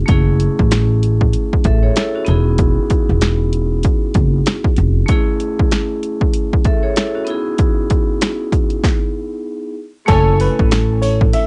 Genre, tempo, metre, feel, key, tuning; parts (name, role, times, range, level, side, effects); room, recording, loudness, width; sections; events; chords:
hip hop, boom-bap hip-hop; 96 BPM; 4/4; swing 60% on 16ths; F# dorian; A4 = 440 Hz
vibraphone with hard mallets; accompaniment; 0.0-11.5 s; A3 to E5; -23 LUFS; equal; cassette tape, high-pass filter, low-pass filter
upright bass; bass; 0.1-5.0, 10.1-11.3 s; E1 to A1; -18 LUFS; equal
punchy analog drum machine; drums; 0.1-11.5 s; hi-hat, kick drum, snare drum; -18 LUFS; equal; overdrive, cassette tape
dark upright piano; melody; 10.1-11.5 s; A4 to E5; -20 LUFS; equal; high-pass filter, low-pass filter, cassette tape
rich studio string section; stabs; 10.1-10.4 s; A3 to G#5; -30 LUFS; equal; high-pass filter, low-pass filter, cassette tape, analog delay
sleigh bells; percussion; 10.1-11.5 s; -38 LUFS; equal
little or no reverb; home recording on cassette, nothing above 10.4 kHz; -16 LUFS; mono
0.0-10.1 A section; 10.1-11.5 B section
break 5.1-10.1; stop 8.8-10.1
0.1 F#m9; 2.3 Emaj9; 5.1 Amaj7; 7.3 Emaj13/B; 10.1 F#m9